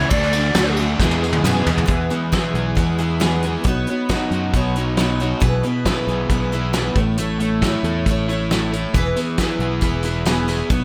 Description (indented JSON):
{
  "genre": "folk rock and heartland rock",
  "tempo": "136 BPM",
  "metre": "4/4",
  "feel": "straight",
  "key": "E major",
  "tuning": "A4 = 441 Hz",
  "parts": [
    { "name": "lead guitar through a small cranked amp", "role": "melody", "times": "0.0-0.7 s", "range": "D5", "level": "-26 LUFS", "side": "equal", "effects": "overdrive, subtle chorus" },
    { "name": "picked steel-string acoustic guitar", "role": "accompaniment", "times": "0.0-10.8 s", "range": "E2 to C#5", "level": "-27 LUFS", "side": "equal", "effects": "subtle chorus" },
    { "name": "tonewheel organ", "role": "sustained chords", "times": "0.0-1.9 s", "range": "G#3 to A4", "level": "-34 LUFS", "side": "equal", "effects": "none" },
    { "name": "overdriven semi-hollow guitar", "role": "riff", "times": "0.0-10.8 s", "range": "E2 to A4", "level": "-25 LUFS", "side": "equal", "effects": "none" },
    { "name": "fingered electric bass", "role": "bass", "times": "0.0-10.8 s", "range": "E1 to F#2", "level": "-24 LUFS", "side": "equal", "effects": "none" },
    { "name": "soft brush drum kit", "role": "drums", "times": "0.1-10.8 s", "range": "hi-hat, kick drum, ride cymbal, snare drum, toms", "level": "-24 LUFS", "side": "equal", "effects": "gated reverb" },
    { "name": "tambourine", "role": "percussion", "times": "0.2-1.9, 9.0-10.8 s", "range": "none", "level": "-38 LUFS", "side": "equal", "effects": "none" }
  ],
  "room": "light reverb, small room reverb",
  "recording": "bright 1980s-style digital production",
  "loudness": "-19 LUFS",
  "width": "mono",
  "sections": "0.0-1.9 A section; 1.9-10.8 B section",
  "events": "drum fill 1.0-1.9",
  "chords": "0.1 D; 1.0 E; 3.7 Badd9; 5.4 E/B; 7.0 A; 8.9 E"
}